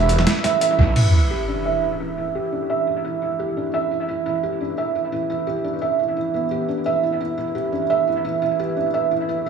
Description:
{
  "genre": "half-time drum and bass",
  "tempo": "173 BPM",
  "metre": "4/4",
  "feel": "half-time",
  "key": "unclear",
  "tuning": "A4 = 440 Hz",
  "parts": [
    { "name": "deep dark ambient pad", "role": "sustained chords", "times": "0.0-9.5 s", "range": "E4 to E5", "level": "-26 LUFS", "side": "right 6 dB", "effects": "chorus, built-in reverb, vintage 12-bit sampler grit, sidechain pumping" },
    { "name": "felt-muted upright piano", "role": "arpeggios", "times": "0.0-9.5 s", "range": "B3 to E5", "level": "-22 LUFS", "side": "right 2 dB", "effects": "low-pass filter, dub echo" },
    { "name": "phased detuned saw bass", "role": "bass", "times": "0.0-0.9 s", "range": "E1 to B1", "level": "-18 LUFS", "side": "equal", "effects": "phaser, tube saturation" },
    { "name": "boom bap sampler-style drum kit", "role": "drums", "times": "0.1-1.0 s", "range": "crash cymbal, hi-hat, snare drum", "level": "-24 LUFS", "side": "right 1 dB", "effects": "overdrive, tape echo" },
    { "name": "electronic kick drum", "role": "drums", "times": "0.8-0.9 s", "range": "none", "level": "-19 LUFS", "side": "right 1 dB", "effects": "overdrive" },
    { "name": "sub drop", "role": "sound effects", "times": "1.0-2.3 s", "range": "none", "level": "-19 LUFS", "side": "equal", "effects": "none" }
  ],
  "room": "moderate echo chamber reverb, RT60 1.6 s",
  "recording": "echo-heavy mix",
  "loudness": "-19 LUFS",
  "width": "side -6 dB against mid",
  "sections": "1.0-9.5 A section",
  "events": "impact 1.0-2.3",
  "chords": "0.0 E5"
}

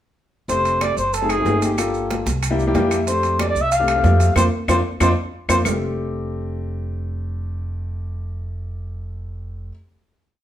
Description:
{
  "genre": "Afro-Cuban jazz",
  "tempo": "186 BPM",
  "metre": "4/4",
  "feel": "straight",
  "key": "F major",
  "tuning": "A4 = 440 Hz",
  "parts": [
    { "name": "dark trumpet", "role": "melody", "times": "0.5-5.6 s", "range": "G4 to F5", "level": "-20 LUFS", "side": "equal", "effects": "none" },
    { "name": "warm concert grand piano", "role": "accompaniment", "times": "0.5-9.7 s", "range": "A3 to G5", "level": "-24 LUFS", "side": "left 2 dB", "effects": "none" },
    { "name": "upright bass", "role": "bass", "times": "0.5-9.7 s", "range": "F1 to F2", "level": "-23 LUFS", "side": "right 1 dB", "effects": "none" },
    { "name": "congas", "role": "percussion", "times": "0.5-5.7 s", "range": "none", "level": "-28 LUFS", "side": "left 1 dB", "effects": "none" },
    { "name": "maracas", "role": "percussion", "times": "0.5-5.7 s", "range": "none", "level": "-32 LUFS", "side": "right 4 dB", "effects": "none" },
    { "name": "timbales", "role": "percussion", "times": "0.5-5.7 s", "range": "none", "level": "-29 LUFS", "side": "right 5 dB", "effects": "none" },
    { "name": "claves", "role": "percussion", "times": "0.8-5.7 s", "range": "none", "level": "-30 LUFS", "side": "left 2 dB", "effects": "none" }
  ],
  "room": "wet large studio reverb, RT60 0.8 s",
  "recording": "band playing live in one room",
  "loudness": "-18 LUFS",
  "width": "side -11 dB against mid",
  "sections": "0.5-5.7 A section; 5.7-8.2 final chord",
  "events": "grand piano fill 2.6-3.1; band accent 4.4-5.7; drum fill 5.2-5.7",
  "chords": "0.5 F69; 1.1 F#dim7; 1.8 Gm7; 2.4 C9; 3.1 F69"
}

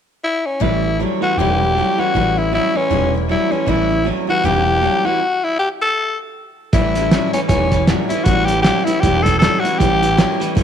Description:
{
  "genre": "rockabilly",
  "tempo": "157 BPM",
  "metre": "4/4",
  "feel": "swing 58% on 8ths",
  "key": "A mixolydian",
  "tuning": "A4 = 436 Hz",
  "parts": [
    { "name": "growling tenor saxophone", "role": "melody", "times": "0.2-10.6 s", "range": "C#4 to A4", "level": "-18 LUFS", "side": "left 2 dB", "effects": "none" },
    { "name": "picked steel-string acoustic guitar", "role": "accompaniment", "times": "0.6-10.6 s", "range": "A2 to E4", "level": "-23 LUFS", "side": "left 14 dB", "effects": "none" },
    { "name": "electric guitar through a small old amp", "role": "riff", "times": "0.6-10.6 s", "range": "A2 to F#3", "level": "-22 LUFS", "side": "right 13 dB", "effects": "none" },
    { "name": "upright bass", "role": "bass", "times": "0.6-10.6 s", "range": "E1 to A1", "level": "-21 LUFS", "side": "right 1 dB", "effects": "none" },
    { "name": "cloth-damped thuddy drum kit", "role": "drums", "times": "6.7-10.6 s", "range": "hi-hat, kick drum, snare drum", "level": "-18 LUFS", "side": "right 1 dB", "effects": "none" }
  ],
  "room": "light reverb, small room ambience",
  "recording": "1960s-style stereo with parts hard left and right",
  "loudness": "-14 LUFS",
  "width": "side -8 dB against mid",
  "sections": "0.6-6.7 A section; 6.7-10.6 B section",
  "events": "stop 5.2-6.7",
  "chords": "0.0 N.C.; 0.6 A7"
}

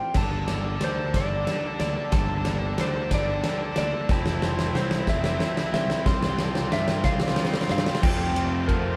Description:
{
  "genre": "post-rock",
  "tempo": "61 BPM (dotted quarters)",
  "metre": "6/8",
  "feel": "straight",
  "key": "F major",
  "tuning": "A4 = 440 Hz",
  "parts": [
    { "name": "electric slide guitar", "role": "melody", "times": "0.0-9.0 s", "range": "Bb4 to C6", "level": "-33 LUFS", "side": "equal", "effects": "none" },
    { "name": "pedal harmonium", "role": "sustained chords", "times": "0.0-9.0 s", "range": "F3 to A5", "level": "-41 LUFS", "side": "equal", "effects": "none" },
    { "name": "twangy electric guitar", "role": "arpeggios", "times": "0.0-9.0 s", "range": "C3 to F4", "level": "-39 LUFS", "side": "equal", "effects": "none" },
    { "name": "fuzz fingered electric bass", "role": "bass", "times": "0.1-9.0 s", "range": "F1 to G2", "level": "-32 LUFS", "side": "equal", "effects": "overdrive" },
    { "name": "big rock drum kit", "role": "drums", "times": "0.1-8.8 s", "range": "crash cymbal, kick drum, ride cymbal, snare drum", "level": "-28 LUFS", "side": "equal", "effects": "none" },
    { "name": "distorted electric guitar", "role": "riff", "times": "0.2-9.0 s", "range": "F2 to A4", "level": "-35 LUFS", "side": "equal", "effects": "overdrive" },
    { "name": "crunchy overdriven guitar", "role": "riff", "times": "8.0-9.0 s", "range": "F2 to F4", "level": "-32 LUFS", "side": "equal", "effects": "none" }
  ],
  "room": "moderate stone room reverb, RT60 1.1 s",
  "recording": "band playing live in one room",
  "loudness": "-25 LUFS",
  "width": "mono",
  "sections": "0.0-8.0 A section",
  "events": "build-up 0.0-8.0; drum fill 0.0-8.0",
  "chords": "0.2 Gmadd9; 4.1 Fmaj7; 6.1 Csus4; 8.0 Fadd9"
}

